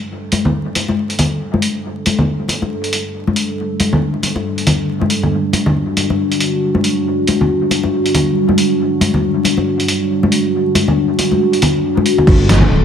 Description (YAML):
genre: deep dubstep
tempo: 138 BPM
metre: 4/4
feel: swing 59% on 16ths, half-time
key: unclear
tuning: A4 = 438 Hz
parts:
  - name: dark analog pad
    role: sustained chords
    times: 0.0-12.8 s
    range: G3 to A4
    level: -17 LUFS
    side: equal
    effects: chorus, phaser
  - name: trip hop sampler-style drum kit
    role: drums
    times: 0.3-12.6 s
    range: crash cymbal, hi-hat, rim click, snare drum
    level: -19 LUFS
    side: right 1 dB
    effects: none
  - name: congas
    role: percussion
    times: 0.3-12.7 s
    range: none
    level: -17 LUFS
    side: left 2 dB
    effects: dub echo
  - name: dark detuned saw bass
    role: bass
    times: 12.3-12.8 s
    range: D1 to G1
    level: -12 LUFS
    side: equal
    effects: none
  - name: electronic kick drum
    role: drums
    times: 12.3-12.4 s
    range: none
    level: -13 LUFS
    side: equal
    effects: overdrive
  - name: impact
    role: sound effects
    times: 12.3-12.8 s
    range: none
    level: -18 LUFS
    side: equal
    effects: none
room: light reverb, digital ambience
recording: echo-heavy mix, vinyl crackle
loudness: -13 LUFS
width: side -8 dB against mid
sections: 0.0-12.3 A section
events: filter sweep on analog synth pad 0.0-12.3; impact 12.3-12.8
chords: 0.0 Gsus2